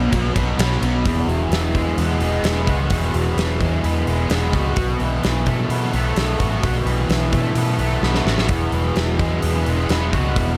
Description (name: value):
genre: rock, shoegaze and dream pop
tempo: 129 BPM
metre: 4/4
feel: straight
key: E major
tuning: A4 = 437 Hz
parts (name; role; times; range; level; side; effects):
- fuzz guitar; riff; 0.0-10.6 s; E2 to F#4; -24 LUFS; equal; distortion, analog chorus
- vintage muted fingered electric bass; bass; 0.0-10.6 s; E1 to B2; -24 LUFS; equal; none
- huge arena drum kit; drums; 0.1-10.5 s; hi-hat, kick drum, ride cymbal, snare drum; -25 LUFS; equal; none
room: light reverb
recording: none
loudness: -20 LUFS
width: mono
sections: 0.0-1.1 A section; 1.1-10.6 B section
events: drum fill 8.0-8.5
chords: 0.0 B5; 1.1 Eadd9; 4.8 B7sus4; 8.5 Eadd9